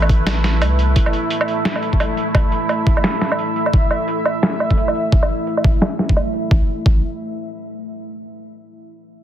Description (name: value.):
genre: half-time drum and bass.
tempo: 173 BPM.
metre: 4/4.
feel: swing 59% on 16ths, half-time.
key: unclear.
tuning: A4 = 440 Hz.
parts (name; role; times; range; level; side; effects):
deep dark ambient pad; sustained chords; 0.0-6.7 s; A3 to E5; -22 LUFS; right 1 dB; chorus, built-in reverb, sidechain pumping.
saturated sub bass; bass; 0.0-1.0, 6.5-7.0 s; A1 to C2; -17 LUFS; equal; none.
boom bap sampler-style drum kit; drums; 0.0-6.4 s; hi-hat, snare drum, woodblock; -21 LUFS; right 1 dB; overdrive, low-pass filter on hats, studio reverb, low-pass filter on perc, low-pass filter on snare.
electronic kick drum; drums; 0.1-6.9 s; none; -15 LUFS; equal; overdrive, studio reverb.
room: light reverb.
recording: dense, heavily limited modern master.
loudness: -15 LUFS.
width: side -11 dB against mid.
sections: 0.0-6.5 A section; 6.5-7.9 B section.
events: filter sweep on drum 0.0-6.5.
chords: 0.0 A5.